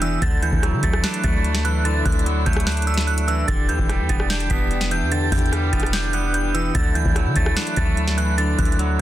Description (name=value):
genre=hip hop, trap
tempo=147 BPM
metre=4/4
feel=half-time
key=unclear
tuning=A4 = 442 Hz
part: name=glassy synth bell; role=melody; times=0.0-9.0 s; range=E6 to B6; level=-26 LUFS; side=right 4 dB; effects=chorus
part: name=electric guitar at the edge of break-up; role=accompaniment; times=0.0-9.0 s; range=D3 to D4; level=-26 LUFS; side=right 2 dB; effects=none
part: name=dark chamber string section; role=sustained chords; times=0.0-9.0 s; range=E3 to G4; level=-29 LUFS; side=left 3 dB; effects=none
part: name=warm 808-style bass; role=bass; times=0.0-9.0 s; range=E1 to D3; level=-22 LUFS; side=equal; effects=none
part: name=booming analog drum machine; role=drums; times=0.0-8.9 s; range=hi-hat, kick drum, rim click, snare drum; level=-22 LUFS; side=equal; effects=none
room=digital ambience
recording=dense, heavily limited modern master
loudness=-18 LUFS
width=side -13 dB against mid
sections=0.0-9.0 A section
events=none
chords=0.2 Dadd9; 3.5 Em7; 6.7 Dadd9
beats=| 0.22 0.63 1.03 1.44 | 1.85 2.26 2.67 3.08 | 3.48 3.89 4.30 4.71 | 5.12 5.53 5.93 6.34 | 6.75 7.16 7.57 7.97 | 8.38 8.79